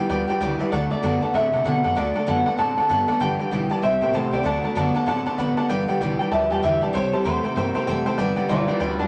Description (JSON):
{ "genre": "rockabilly", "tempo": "193 BPM", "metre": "4/4", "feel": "swing 61% on 8ths", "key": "G major", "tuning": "A4 = 436 Hz", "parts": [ { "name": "picked steel-string acoustic guitar", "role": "accompaniment", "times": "0.0-9.1 s", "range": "G2 to A4", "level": "-30 LUFS", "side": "equal", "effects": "none" }, { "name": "tack piano", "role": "accompaniment", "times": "0.0-9.1 s", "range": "A4 to B5", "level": "-30 LUFS", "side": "equal", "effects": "none" }, { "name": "electric guitar through a small old amp", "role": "riff", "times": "0.0-9.1 s", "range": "G2 to C4", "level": "-27 LUFS", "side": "equal", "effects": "spring reverb" }, { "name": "woody fretless electric bass", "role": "bass", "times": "0.1-9.1 s", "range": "F#1 to C3", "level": "-35 LUFS", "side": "equal", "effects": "none" }, { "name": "electric guitar through a small old amp", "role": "melody", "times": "0.7-9.1 s", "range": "D4 to A5", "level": "-26 LUFS", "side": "equal", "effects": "spring reverb" } ], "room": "moderate studio reverb, RT60 0.6 s", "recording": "none", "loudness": "-22 LUFS", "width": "mono", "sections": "0.0-5.7 A section; 5.7-9.1 B section", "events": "honky-tonk piano fill 5.1-5.7; clean electric guitar solo 5.7-9.1", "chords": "0.0 G6; 0.7 D6; 3.2 G6; 3.8 C6; 4.5 D6; 5.7 G6; 6.9 C6; 8.2 G6", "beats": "0.09 0.41 | 0.72 1.03 1.34 1.65 | 1.96 2.27 2.58 2.90 | 3.21 3.52 3.83 4.14 | 4.45 4.76 5.08 5.39 | 5.70 6.01 6.32 6.63 | 6.94 7.25 7.57 7.88 | 8.19 8.50 8.81" }